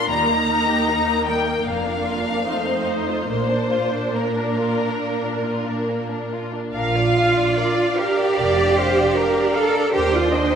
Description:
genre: classical, slow romantic movement for string orchestra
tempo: 68-78 BPM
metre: 4/4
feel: rubato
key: Bb major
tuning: A4 = 440 Hz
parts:
  - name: rich symphonic violin section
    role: melody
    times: 0.0-10.6 s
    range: Bb4 to Bb5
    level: -25 LUFS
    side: left 4 dB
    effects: none
  - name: warm symphonic violin section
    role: second line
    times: 0.0-10.6 s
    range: G3 to F5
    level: -24 LUFS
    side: left 2 dB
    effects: none
  - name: clear chamber viola section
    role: accompaniment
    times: 0.0-10.6 s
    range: A3 to F5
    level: -24 LUFS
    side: right 2 dB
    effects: none
  - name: rich symphonic cello section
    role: bass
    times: 0.0-10.6 s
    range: Eb2 to A4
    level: -23 LUFS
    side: right 3 dB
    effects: none
  - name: rich chamber double bass section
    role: bass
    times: 0.1-10.6 s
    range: F1 to Eb2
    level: -27 LUFS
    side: right 3 dB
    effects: none
room: wet concert hall reverb, RT60 1.8 s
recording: minimal, uncompressed stereo recording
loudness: -18 LUFS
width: side -7 dB against mid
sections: 0.0-6.8 A section; 6.8-10.6 A section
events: none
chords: 0.1 Eb; 1.7 Bb/F; 2.5 F7; 3.3 Bb; 9.9 Ebmaj7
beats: | 0.09 0.88 1.66 2.46 | 3.30 4.16 5.03 5.89 | 6.76 7.58 8.37 9.16 | 9.94

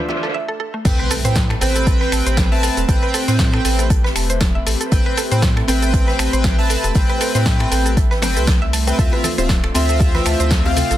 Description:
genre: deep house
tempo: 118 BPM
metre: 4/4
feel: swing 56% on 16ths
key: A minor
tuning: A4 = 440 Hz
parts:
  - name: airy breathy pad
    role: sustained chords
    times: 0.0-11.0 s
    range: A3 to E5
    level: -28 LUFS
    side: left 1 dB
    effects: chorus, phaser, sidechain pumping
  - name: chorused polysynth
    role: stabs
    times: 0.0-10.9 s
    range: C4 to A5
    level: -21 LUFS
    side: equal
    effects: cassette tape, sidechain pumping, analog delay
  - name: mallet-like synth pluck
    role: arpeggios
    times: 0.1-11.0 s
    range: A3 to A5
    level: -26 LUFS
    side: right 3 dB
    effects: chorus, sidechain pumping, analog delay
  - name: deep house drum kit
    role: drums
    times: 0.1-11.0 s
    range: crash cymbal, finger snaps, hi-hat, shaker, snare drum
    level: -23 LUFS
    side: left 1 dB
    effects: overdrive, low-pass filter on hats, low-pass filter on perc, low-pass filter on cymbals, low-pass filter on snare, low-pass filter on room
  - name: unplugged drum kit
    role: drums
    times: 0.1-10.9 s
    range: hi-hat, snare drum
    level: -32 LUFS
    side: right 2 dB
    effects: none
  - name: bongos and congas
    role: percussion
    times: 0.1-0.2, 9.1-10.9 s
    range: none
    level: -29 LUFS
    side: right 2 dB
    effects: none
  - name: round analog bass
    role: bass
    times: 0.9-11.0 s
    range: D1 to A2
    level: -20 LUFS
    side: equal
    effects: sidechain pumping
  - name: electronic kick drum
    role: drums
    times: 0.9-10.6 s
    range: none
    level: -17 LUFS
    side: equal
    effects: overdrive
  - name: impact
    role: sound effects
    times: 0.9-2.9 s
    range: none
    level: -27 LUFS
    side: equal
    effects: none
room: digital ambience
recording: dense, heavily limited modern master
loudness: -14 LUFS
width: side -13 dB against mid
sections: 0.9-11.0 A section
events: break 0.3-0.9; drop 0.9-11.0; impact 0.9-2.9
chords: 0.0 Dm9; 0.9 Am9; 9.0 Dm9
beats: 0.34 | 0.85 1.36 1.87 2.38 | 2.88 3.39 3.90 4.41 | 4.92 5.43 5.94 6.45 | 6.95 7.46 7.97 8.48 | 8.99 9.50 10.00 10.51

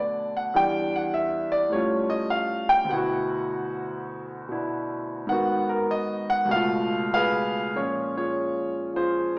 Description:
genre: solo jazz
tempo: 100 BPM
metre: 4/4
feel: swing 68% on 8ths, rubato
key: unclear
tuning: A4 = 440 Hz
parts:
  - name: clear concert grand piano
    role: solo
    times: 0.0-9.4 s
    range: C#2 to G5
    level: -23 LUFS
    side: equal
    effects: none
room: wet large studio reverb, RT60 1.3 s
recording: band playing live in one room, small speaker sound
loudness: -23 LUFS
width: side -28 dB against mid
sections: 0.0-7.8 A section; 7.8-9.4 B section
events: grand piano solo 0.0-7.8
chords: 0.0 Bm7; 0.5 Em7; 1.7 Aaug7; 2.9 D69; 5.3 G#m7; 6.5 C#7b13; 7.8 Bbm7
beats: | 0.54 1.13 1.72 2.31 | 2.91 3.50 4.09 4.68 | 5.29 5.89 6.51 7.13 | 7.76 8.36 8.97

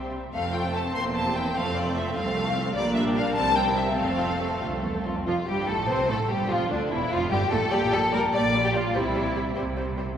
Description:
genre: quick classical-period movement for string orchestra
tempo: 98 BPM (dotted quarters)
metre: 6/8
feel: straight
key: F major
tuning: A4 = 440 Hz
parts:
  - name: rich studio violin section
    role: second line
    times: 0.0-9.6 s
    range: G3 to D5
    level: -28 LUFS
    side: left 1 dB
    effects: none
  - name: rich studio viola section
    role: accompaniment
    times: 0.0-10.1 s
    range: D3 to G4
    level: -30 LUFS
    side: right 2 dB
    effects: none
  - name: rich studio cello section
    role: bass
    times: 0.0-10.1 s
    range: C2 to C3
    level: -31 LUFS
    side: right 1 dB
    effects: none
  - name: rich studio double bass section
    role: bass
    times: 0.0-10.1 s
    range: E1 to D2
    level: -33 LUFS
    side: right 3 dB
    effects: none
  - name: rich studio violin section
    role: melody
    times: 0.3-10.1 s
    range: D4 to C6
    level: -29 LUFS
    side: left 3 dB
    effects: none
room: wet cathedral reverb, RT60 3.9 s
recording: recorded in a church or concert hall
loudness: -23 LUFS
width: side -9 dB against mid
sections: 0.0-5.3 A section; 5.3-10.2 B section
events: none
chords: 0.3 F; 0.9 C7/E; 1.6 F; 2.8 Gm/Bb; 3.4 C7; 4.0 F; 5.9 C5; 6.5 F; 7.7 Gm/Bb; 8.9 C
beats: | 0.34 0.95 | 1.55 2.16 | 2.75 3.37 | 4.00 4.63 | 5.27 5.89 | 6.50 7.11 | 7.72 8.33 | 8.95 9.56

